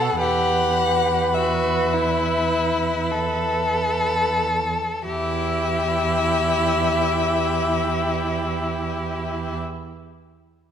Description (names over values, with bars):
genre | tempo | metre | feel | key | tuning
classical, slow romantic movement for string quartet | 44-55 BPM | 4/4 | rubato | E minor | A4 = 440 Hz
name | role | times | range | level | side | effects
warm violin | melody | 0.0-9.6 s | E5 to F#5 | -25 LUFS | left 7 dB | none
rich violin | second line | 0.0-9.6 s | E4 to A4 | -25 LUFS | left 2 dB | none
clear viola | accompaniment | 0.0-9.6 s | E4 to B4 | -25 LUFS | right 3 dB | none
rich cello | bass | 0.0-9.6 s | E2 to B2 | -27 LUFS | right 5 dB | none
room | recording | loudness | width
moderate scoring stage reverb, RT60 1.6 s | none | -19 LUFS | side -8 dB against mid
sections
0.0-5.1 A section; 5.1-10.3 B section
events
slowing down 0.0-5.1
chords
0.2 Em